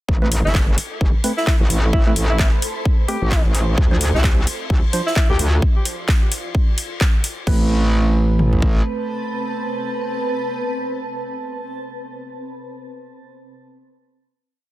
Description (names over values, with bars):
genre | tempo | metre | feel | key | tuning
bass house | 130 BPM | 4/4 | swing 58% on 16ths | A minor | A4 = 440 Hz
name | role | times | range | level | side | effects
metallic wobble bass | bass | 0.1-8.8 s | G1 to D2 | -18 LUFS | equal | distortion, chorus, tube saturation, sidechain pumping
big-room dance drum kit | drums | 0.1-8.7 s | kick drum, toms | -17 LUFS | equal | none
soft-mallet drum kit | drums | 0.1-7.4 s | ride cymbal, snare drum | -34 LUFS | left 4 dB | sidechain pumping on cymbals, high-pass filter on cymbals, high-pass filter on snare, high-pass filter on room
granular cloud pad | texture | 0.9-11.9 s | C4 to C6 | -28 LUFS | right 1 dB | built-in reverb, sidechain pumping
percussive organ stab | stabs | 0.2-12.4 s | F3 to C5 | -26 LUFS | right 4 dB | chorus, sidechain pumping, digital delay
big-room dance drum kit | drums | 0.3-7.6 s | crash cymbal, handclaps, hi-hat | -25 LUFS | equal | none
warm alto saxophone | melody | 0.5-5.4 s | E4 to G4 | -25 LUFS | left 1 dB | digital delay
room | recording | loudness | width
studio reverb | dense, heavily limited modern master | -16 LUFS | side -16 dB against mid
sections
0.1-7.5 drop; 7.5-11.2 final chord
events
drop 0.1-7.5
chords
0.1 Amadd9; 3.8 Dm7; 7.5 Amadd9